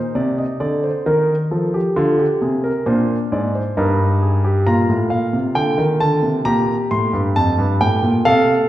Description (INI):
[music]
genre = classical, baroque-style 3-part fugue for grand piano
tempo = 67 BPM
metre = 3/4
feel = straight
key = unclear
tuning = A4 = 440 Hz
[part]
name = dark grand piano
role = solo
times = 0.0-8.7 s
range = F2 to C6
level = -15 LUFS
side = equal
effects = none
[sound]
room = wet recital hall reverb, RT60 1.7 s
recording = recorded in a church or concert hall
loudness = -15 LUFS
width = side -14 dB against mid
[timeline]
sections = 0.0-8.7 A section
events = none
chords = 0.0 Eb5; 1.1 F7/Eb; 2.0 Bb; 3.8 Eb/G; 4.7 Bb; 6.5 C5/Bb; 7.4 F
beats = 0.16 1.07 | 1.97 2.87 3.77 | 4.67 5.56 6.46 | 7.36 8.26